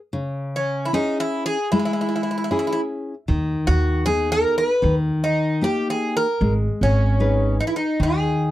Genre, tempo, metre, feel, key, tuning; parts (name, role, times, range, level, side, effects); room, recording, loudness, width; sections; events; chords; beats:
fado-style ballad; 76 BPM; 4/4; rubato; G# minor; A4 = 440 Hz
nylon-string guitar; accompaniment; 0.1-8.5 s; C#3 to B4; -23 LUFS; left 2 dB
Greek bouzouki; melody; 0.6-8.5 s; C#4 to B4; -22 LUFS; right 1 dB
upright bass; bass; 3.3-8.3 s; G#1 to D#2; -20 LUFS; right 1 dB
little or no reverb; dry, close 1970s-style studio recording; -19 LUFS; side -14 dB against mid
0.0-8.5 A section
0.1 C#m; 3.3 G#m/D#; 4.8 D#; 6.4 G#m
| 0.12 0.92 1.72 2.51 | 3.29 4.06 4.84 5.63 | 6.42 7.20 8.00